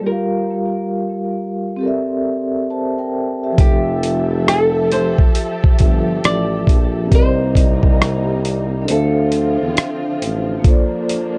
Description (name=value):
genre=lo-fi hip hop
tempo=68 BPM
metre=4/4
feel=swing 65% on 16ths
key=F major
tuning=A4 = 440 Hz
part: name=vibraphone with soft mallets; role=accompaniment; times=0.0-11.4 s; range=F3 to A5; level=-22 LUFS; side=equal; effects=cassette tape, low-pass filter
part: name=flamenco guitar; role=melody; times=0.1-10.2 s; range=G4 to D5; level=-24 LUFS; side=equal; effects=low-pass filter
part: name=dark studio string section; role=sustained chords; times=3.6-11.4 s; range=C3 to E5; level=-31 LUFS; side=equal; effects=low-pass filter
part: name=mellow tuba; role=bass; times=3.6-10.6 s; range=F1 to E2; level=-22 LUFS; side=equal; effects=none
part: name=dusty soul sampler-style drum kit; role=drums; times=3.6-11.4 s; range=hi-hat, kick drum, rim click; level=-15 LUFS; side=equal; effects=none
room=little or no reverb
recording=dark, warm production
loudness=-17 LUFS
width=mono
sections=0.0-3.6 A section; 3.6-11.4 B section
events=filter sweep 0.0-3.6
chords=0.1 Gm7; 1.8 C13; 3.6 Fmaj9; 7.1 Cm7; 8.9 Dm7; 10.6 Bbmaj9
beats=| 0.06 0.94 1.82 2.70 | 3.59 4.47 5.35 6.23 | 7.12 8.00 8.88 9.76 | 10.64